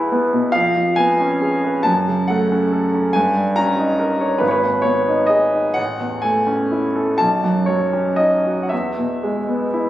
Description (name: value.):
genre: classical, romantic nocturne for solo piano.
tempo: 38-48 BPM (dotted quarters).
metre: 12/8.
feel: rubato.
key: E major.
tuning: A4 = 440 Hz.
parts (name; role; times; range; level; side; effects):
clear grand piano; solo; 0.0-9.9 s; G#1 to A#5; -16 LUFS; equal; none.
room: light reverb.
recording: recorded on a phone in the room, studio reverb.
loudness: -16 LUFS.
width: side -13 dB against mid.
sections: 0.0-9.9 A section.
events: none.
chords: 0.0 E; 0.5 C#7/E#; 1.9 F#m; 3.2 D#7/G; 4.4 G#m; 5.8 Amaj7; 7.2 Badd9; 8.7 E.